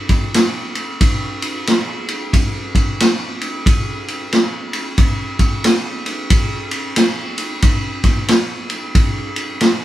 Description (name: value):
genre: rock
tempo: 91 BPM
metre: 4/4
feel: swing 62% on 8ths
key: none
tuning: none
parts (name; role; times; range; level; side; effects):
- vintage drum kit; drums; 0.1-9.8 s; kick drum, ride cymbal, snare drum; -15 LUFS; equal; none
room: light reverb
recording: band playing live in one room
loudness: -15 LUFS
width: side -13 dB against mid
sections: 0.0-9.8 A section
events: none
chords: none